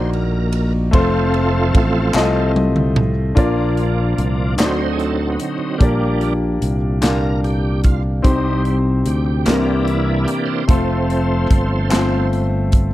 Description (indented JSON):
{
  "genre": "slow gospel",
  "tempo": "49 BPM (dotted quarters)",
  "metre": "6/8",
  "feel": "straight",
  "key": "unclear",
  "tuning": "A4 = 440 Hz",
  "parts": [
    { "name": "clear grand piano", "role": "accompaniment", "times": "0.0-12.9 s", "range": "Bb2 to F5", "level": "-20 LUFS", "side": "left 2 dB", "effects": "none" },
    { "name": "bright tonewheel organ", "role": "sustained chords", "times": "0.0-12.5 s", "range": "E3 to C5", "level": "-23 LUFS", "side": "right 3 dB", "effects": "slow rotary speaker, chorus vibrato" },
    { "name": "modern bright fingered electric bass", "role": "bass", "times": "0.0-12.9 s", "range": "F1 to D2", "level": "-19 LUFS", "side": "equal", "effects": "none" },
    { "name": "modern studio drum kit", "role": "drums", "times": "0.1-12.9 s", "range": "hi-hat, kick drum, ride cymbal, snare drum, toms", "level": "-16 LUFS", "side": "equal", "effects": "none" },
    { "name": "group handclap", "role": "percussion", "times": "2.1-12.3 s", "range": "none", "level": "-27 LUFS", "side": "left 3 dB", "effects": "none" }
  ],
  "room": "little or no reverb",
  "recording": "dry, close 1970s-style studio recording",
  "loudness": "-15 LUFS",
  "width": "side -15 dB against mid",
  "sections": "0.0-3.4 A section; 3.4-12.9 B section",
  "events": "tonewheel organ solo 0.0-3.4, 3.4-12.9; drum fill 2.2-3.4",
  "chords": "0.0 Ebm; 0.9 F; 3.4 Bb; 4.6 D7b9; 5.8 Gm/Bb; 8.2 Cm; 9.5 C7; 10.7 F"
}